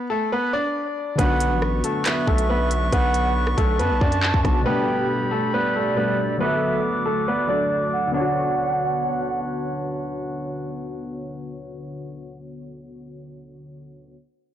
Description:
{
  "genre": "hip hop, drill",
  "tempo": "138 BPM",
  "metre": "4/4",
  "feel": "half-time",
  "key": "B minor",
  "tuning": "A4 = 437 Hz",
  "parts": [
    { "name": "clear baby grand piano", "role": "melody", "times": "0.0-9.4 s", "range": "A3 to D5", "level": "-24 LUFS", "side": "left 1 dB", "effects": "digital delay" },
    { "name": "breathy mellow concert flute", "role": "second line", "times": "1.2-9.4 s", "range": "D5 to A5", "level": "-26 LUFS", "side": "right 5 dB", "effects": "digital delay" },
    { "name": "warbly lo-fi synth keys", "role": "accompaniment", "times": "1.2-14.1 s", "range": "B2 to C#5", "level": "-28 LUFS", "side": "left 2 dB", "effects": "chorus" },
    { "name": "warm woodwind section", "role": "sustained chords", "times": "1.2-12.4 s", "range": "D4 to D6", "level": "-30 LUFS", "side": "left 1 dB", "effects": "none" },
    { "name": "distorted 808-style bass", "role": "bass", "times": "1.2-4.7 s", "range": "A1 to F#2", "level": "-23 LUFS", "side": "equal", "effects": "distortion" },
    { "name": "drill drum kit", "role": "drums", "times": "1.2-4.5 s", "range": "handclaps, hi-hat, kick drum, rim click", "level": "-22 LUFS", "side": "equal", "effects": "none" }
  ],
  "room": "light reverb, small room ambience",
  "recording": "blown-out, overdriven recording, overdrive, low-pass filter",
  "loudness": "-20 LUFS",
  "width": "side -10 dB against mid",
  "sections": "0.0-1.2 A section; 1.2-8.1 B section; 8.1-11.6 C section",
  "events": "break 0.0-1.2; filter sweep 1.2-8.1",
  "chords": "0.0 D5; 1.2 Bmadd9; 4.7 Gadd9; 6.4 D; 8.1 Bmadd9"
}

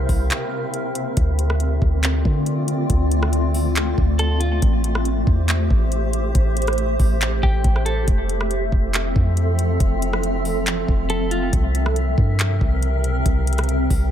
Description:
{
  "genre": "hip hop, atmospheric cloud-rap",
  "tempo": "139 BPM",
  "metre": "4/4",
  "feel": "half-time",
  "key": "D minor",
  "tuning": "A4 = 440 Hz",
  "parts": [
    { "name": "granular cloud pad", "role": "sustained chords", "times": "0.0-14.1 s", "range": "C3 to E5", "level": "-24 LUFS", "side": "equal", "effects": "built-in reverb, sidechain pumping" },
    { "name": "soft 808-style bass", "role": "bass", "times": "0.0-14.1 s", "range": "F1 to D3", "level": "-20 LUFS", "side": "equal", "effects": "none" },
    { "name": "wind-like tuned noise texture", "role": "texture", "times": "0.0-14.1 s", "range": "A3 to E5", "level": "-31 LUFS", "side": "equal", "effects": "built-in reverb" },
    { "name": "smooth R&B drum kit", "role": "drums", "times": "0.1-14.0 s", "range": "handclaps, hi-hat, kick drum, rim click", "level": "-21 LUFS", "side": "equal", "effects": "none" },
    { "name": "clean electric guitar", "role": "melody", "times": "4.2-4.6, 7.4-8.1, 11.1-11.5 s", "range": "F4 to A4", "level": "-28 LUFS", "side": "equal", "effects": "analog delay" }
  ],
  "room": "little or no reverb",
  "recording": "echo-heavy mix",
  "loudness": "-17 LUFS",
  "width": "side -10 dB against mid",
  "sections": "0.0-1.2 A section; 1.2-14.1 B section",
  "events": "break 0.3-1.2",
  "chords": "0.0 C7; 1.2 Dm7; 4.6 Am7; 8.1 Fmaj7; 11.5 C7"
}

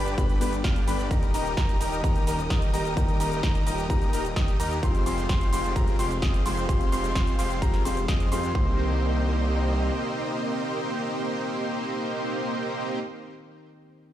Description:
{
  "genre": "EDM, festival progressive house",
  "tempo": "129 BPM",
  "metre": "4/4",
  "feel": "straight",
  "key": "C minor",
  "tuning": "A4 = 440 Hz",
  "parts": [
    { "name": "felt-muted upright piano", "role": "accompaniment", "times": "0.0-14.1 s", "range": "G2 to G4", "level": "-34 LUFS", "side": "left 3 dB", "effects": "sidechain pumping, digital delay" },
    { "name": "dark symphonic string section", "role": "sustained chords", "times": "0.0-13.0 s", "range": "C3 to Eb6", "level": "-38 LUFS", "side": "equal", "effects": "sidechain pumping" },
    { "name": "warm grand piano", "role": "arpeggios", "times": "0.0-13.0 s", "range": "Bb5 to F6", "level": "-34 LUFS", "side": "left 1 dB", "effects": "sidechain pumping, digital delay" },
    { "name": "dense compressed supersaw", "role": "riff", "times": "0.0-13.0 s", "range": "Ab3 to F5", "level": "-30 LUFS", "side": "right 1 dB", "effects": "sidechain pumping, digital delay" },
    { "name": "wide detuned saw bass", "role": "bass", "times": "0.0-9.9 s", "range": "Eb1 to G2", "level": "-30 LUFS", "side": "equal", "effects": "chorus, sidechain pumping" },
    { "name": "big-room dance drum kit", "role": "drums", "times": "0.1-8.5 s", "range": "cabasa, hi-hat, ride cymbal, snare drum", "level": "-36 LUFS", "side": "equal", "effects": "none" },
    { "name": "electronic kick drum", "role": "drums", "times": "0.2-8.6 s", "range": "none", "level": "-24 LUFS", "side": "equal", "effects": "none" }
  ],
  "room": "digital ambience",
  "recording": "played on a big sound system in a bare room, large studio reverb",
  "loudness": "-23 LUFS",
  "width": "side -12 dB against mid",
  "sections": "0.0-8.6 A section; 8.6-12.3 B section",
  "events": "drop 0.0-8.6",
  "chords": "0.0 G; 1.1 Eb; 4.8 Fmadd9; 8.6 Cm7"
}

